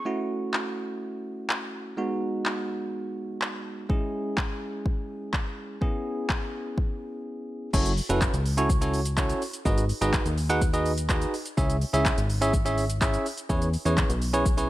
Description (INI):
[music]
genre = dance-pop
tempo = 125 BPM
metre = 4/4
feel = straight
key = F# dorian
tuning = A4 = 437 Hz
[part]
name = bell-like tine electric piano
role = accompaniment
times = 0.0-14.7 s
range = G#3 to F#5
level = -29 LUFS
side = right 1 dB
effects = sidechain pumping
[part]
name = deep house drum kit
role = drums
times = 0.5-14.7 s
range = crash cymbal, handclaps, hi-hat, kick drum, shaker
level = -27 LUFS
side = equal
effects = none
[part]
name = plucky analog bass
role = bass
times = 7.7-14.7 s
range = F#1 to E2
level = -27 LUFS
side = equal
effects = sidechain pumping
[sound]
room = light reverb, digital ambience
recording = none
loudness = -24 LUFS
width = side -16 dB against mid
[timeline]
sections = 0.0-7.7 A section; 7.7-14.7 B section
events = break 7.3-7.7; drop 7.7-14.7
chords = 0.1 F#m7; 2.0 G#m7; 3.9 C#m; 5.8 E6; 7.7 F#m7; 9.7 G#m7; 11.6 C#m; 13.5 E6